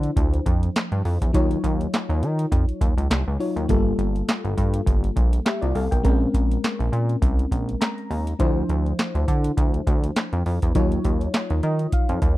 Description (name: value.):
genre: early-eighties boogie funk.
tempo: 102 BPM.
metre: 4/4.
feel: swing 56% on 16ths.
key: unclear.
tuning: A4 = 442 Hz.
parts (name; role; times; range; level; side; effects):
mellow FM electric piano; accompaniment; 0.0-12.4 s; F3 to Bb5; -27 LUFS; left 2 dB; chorus.
chorused synth bass; bass; 0.0-12.4 s; G1 to Eb3; -23 LUFS; equal; none.
booming analog drum machine; drums; 0.0-12.4 s; handclaps, hi-hat, kick drum, snare drum; -22 LUFS; equal; none.
room: digital ambience.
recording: dry, close 1970s-style studio recording.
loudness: -20 LUFS.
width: side -17 dB against mid.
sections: 0.0-12.4 A section.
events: FM electric piano fill 7.5-8.4, 11.3-12.4.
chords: 0.0 Dm9; 1.3 Ebm9; 3.7 Gm9; 6.0 Bbm9; 8.4 Dm9; 10.8 Ebm9.